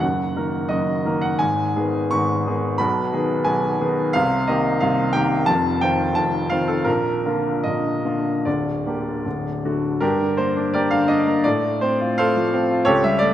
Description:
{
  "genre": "classical, romantic character piece for solo piano",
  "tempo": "72-92 BPM",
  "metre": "2/4",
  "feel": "rubato",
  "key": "G minor from 4.1 s",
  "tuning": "A4 = 440 Hz",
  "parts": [
    { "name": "bright grand piano", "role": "solo", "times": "0.0-13.3 s", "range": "D1 to Db6", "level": "-18 LUFS", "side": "equal", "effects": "none" }
  ],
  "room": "moderate concert hall reverb, RT60 1.9 s",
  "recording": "none",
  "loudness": "-18 LUFS",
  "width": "side -11 dB against mid",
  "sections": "0.0-10.0 A section; 10.0-13.3 B section",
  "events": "none",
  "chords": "0.0 Ebm/Gb; 1.4 Abm; 2.8 Abm/Cb; 4.1 Cm7; 5.5 F5; 6.9 Bb; 8.5 Gm/D; 9.2 D; 10.0 Gm; 11.4 F/A"
}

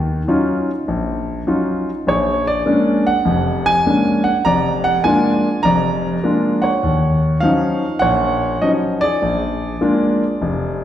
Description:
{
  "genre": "solo jazz",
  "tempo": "101 BPM",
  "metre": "4/4",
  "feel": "swing 67% on 8ths",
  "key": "Eb minor",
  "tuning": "A4 = 440 Hz",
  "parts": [
    { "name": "warm concert grand piano", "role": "solo", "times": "0.0-10.8 s", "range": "F1 to Bb5", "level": "-15 LUFS", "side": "equal", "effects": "none" }
  ],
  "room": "wet recital hall reverb, RT60 1.7 s",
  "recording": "recorded in a church or concert hall",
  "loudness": "-15 LUFS",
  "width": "side -11 dB against mid",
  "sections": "0.0-10.8 A section",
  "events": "none",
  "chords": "0.0 Ebm9; 2.1 Bb7#9; 6.8 Ebm9; 9.2 Bb7"
}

